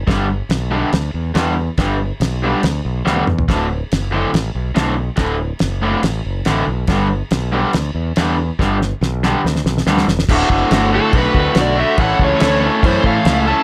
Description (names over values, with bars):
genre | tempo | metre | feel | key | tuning
garage rock duo or trio | 141 BPM | 4/4 | straight | D major | A4 = 440 Hz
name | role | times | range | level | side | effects
growling fingered electric bass | bass | 0.0-13.5 s | D1 to A2 | -22 LUFS | equal | overdrive
raw garage guitar | riff | 0.1-13.6 s | D2 to A4 | -19 LUFS | equal | overdrive
cloth-damped thuddy drum kit | drums | 0.1-13.4 s | crash cymbal, kick drum, snare drum, toms | -22 LUFS | equal | none
overdriven slide guitar | melody | 11.0-13.6 s | A4 to A5 | -21 LUFS | equal | none
room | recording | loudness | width
light reverb | none | -17 LUFS | mono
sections
0.0-10.3 A section; 10.3-13.6 B section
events
drum fill 3.1-3.5, 8.6-10.3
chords
0.1 G; 3.5 D; 6.9 G; 10.3 D; 12.0 A